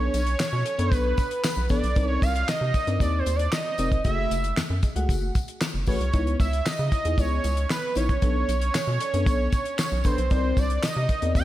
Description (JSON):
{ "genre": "early-eighties boogie funk", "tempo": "115 BPM", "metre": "4/4", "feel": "straight", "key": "unclear", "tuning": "A4 = 440 Hz", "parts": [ { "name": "fat analog lead", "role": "melody", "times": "0.0-11.4 s", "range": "B4 to G5", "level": "-28 LUFS", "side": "right 3 dB", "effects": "slapback echo" }, { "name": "FM electric piano with soft pad layer", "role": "accompaniment", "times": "0.0-11.4 s", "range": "A3 to F#5", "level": "-31 LUFS", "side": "left 4 dB", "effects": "chorus, tremolo" }, { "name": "rubbery square bass", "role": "bass", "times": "0.0-11.4 s", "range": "E#1 to C#3", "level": "-26 LUFS", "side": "equal", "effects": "none" }, { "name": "damped 70s drum kit", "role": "drums", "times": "0.1-11.4 s", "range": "handclaps, hi-hat, kick drum, snare drum", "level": "-26 LUFS", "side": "equal", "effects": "none" }, { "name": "tambourine", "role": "percussion", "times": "0.1-11.4 s", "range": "none", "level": "-41 LUFS", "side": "left 5 dB", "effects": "none" } ], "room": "light reverb, small room ambience", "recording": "none", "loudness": "-22 LUFS", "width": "side -14 dB against mid", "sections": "0.0-11.4 A section", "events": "none", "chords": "0.0 Bm9; 2.0 Cm9; 4.0 F#m9; 6.1 C#m9; 8.2 Bm9; 10.3 Cm9" }